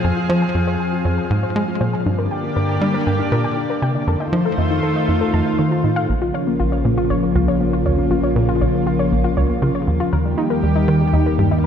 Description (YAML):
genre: ambient, sequencer-driven space music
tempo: 119 BPM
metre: 4/4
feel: straight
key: F dorian, Bb dorian from 6.1 s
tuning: A4 = 444 Hz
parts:
  - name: lush unison pad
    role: sustained chords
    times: 0.0-11.7 s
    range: Db3 to F5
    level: -19 LUFS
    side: left 1 dB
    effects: chorus
  - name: warbly dusty pluck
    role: arpeggios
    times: 0.0-11.7 s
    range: G3 to A5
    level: -25 LUFS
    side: left 3 dB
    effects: chorus, auto-pan, ping-pong delay
  - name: tight sequencer bass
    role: riff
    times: 0.0-11.5 s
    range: Bb1 to Ab3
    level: -20 LUFS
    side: equal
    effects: ping-pong delay
  - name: warm sub bass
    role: bass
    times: 6.1-11.7 s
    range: Bb1 to Eb2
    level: -26 LUFS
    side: right 1 dB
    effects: none
room: wet concert hall reverb, RT60 2.1 s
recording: none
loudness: -16 LUFS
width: side -8 dB against mid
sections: 0.0-6.1 A section; 6.1-11.7 B section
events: filter sweep on synth arpeggio sound 0.0-6.1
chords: 0.0 Fm; 2.1 Gm; 4.1 F7; 6.1 Bbm; 10.1 Eb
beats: | 0.04 0.55 1.05 1.55 | 2.06 2.56 3.07 3.57 | 4.08 4.58 5.08 5.59 | 6.09 6.60 7.10 7.61 | 8.11 8.61 9.12 9.62 | 10.13 10.63 11.13 11.64